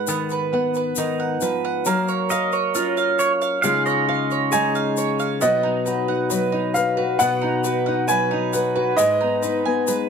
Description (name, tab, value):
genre	acoustic folk duo or small band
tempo	67 BPM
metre	4/4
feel	straight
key	unclear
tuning	A4 = 441 Hz
part	fingerpicked steel-string acoustic guitar	accompaniment	0.0-10.1 s	G#2 to B4	-23 LUFS	left 4 dB	none
part	bowl-back mandolin	arpeggios	0.0-10.1 s	G#3 to G#5	-24 LUFS	right 7 dB	none
part	egg shaker	percussion	0.1-10.1 s	none	-31 LUFS	left 9 dB	none
part	pedal steel guitar	second line	2.3-4.7 s	C#5 to E#5	-23 LUFS	right 3 dB	none
part	bright upright piano	melody	4.5-10.1 s	D#5 to G#5	-22 LUFS	right 1 dB	none
room	moderate studio reverb, RT60 0.5 s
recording	none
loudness	-18 LUFS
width	side -6 dB against mid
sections	0.0-5.4 A section; 5.4-10.1 B section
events	pedal steel guitar solo 0.0-5.4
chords	0.0 G#m7; 1.9 F#maj7; 3.6 C#add9; 5.4 B; 9.0 G#m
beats	0.07 0.96 | 1.86 2.75 3.64 4.53 | 5.42 6.31 7.20 8.09 | 8.98 9.87